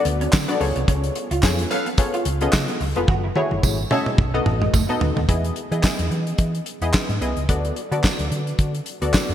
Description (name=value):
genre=early-eighties boogie funk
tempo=109 BPM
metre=4/4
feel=swing 56% on 16ths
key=E major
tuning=A4 = 440 Hz
part: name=funky polysynth comp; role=accompaniment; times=0.0-9.3 s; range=A3 to D#5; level=-25 LUFS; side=left 3 dB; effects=chorus
part: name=electric guitar at the edge of break-up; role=riff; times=0.0-5.3 s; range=G#3 to F#4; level=-29 LUFS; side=right 4 dB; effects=ensemble chorus
part: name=hollow-body short-scale fingered electric bass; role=bass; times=0.1-9.3 s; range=E#1 to E3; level=-24 LUFS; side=equal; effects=none
part: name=damped 70s drum kit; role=drums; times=0.1-9.3 s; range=handclaps, hi-hat, kick drum, snare drum, toms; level=-22 LUFS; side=equal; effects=gated reverb
part: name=tambourine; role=percussion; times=0.3-9.3 s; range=none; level=-36 LUFS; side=right 8 dB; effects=none
part: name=clear horn section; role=second line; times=1.7-4.1 s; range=A4 to E#5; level=-31 LUFS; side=equal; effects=none
room=moderate lush hall reverb, RT60 2.9 s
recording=bright 1980s-style digital production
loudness=-19 LUFS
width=side -10 dB against mid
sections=0.0-5.3 A section; 5.3-9.3 B section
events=drum fill 3.1-5.3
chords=0.0 D6; 0.6 C#7b13; 3.1 F#m9; 4.2 B7; 5.3 Emaj7; 7.5 D6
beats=0.33 | 0.88 1.43 1.98 2.53 | 3.08 3.63 4.18 4.74 | 5.29 5.84 6.39 6.94 | 7.49 8.04 8.59 9.14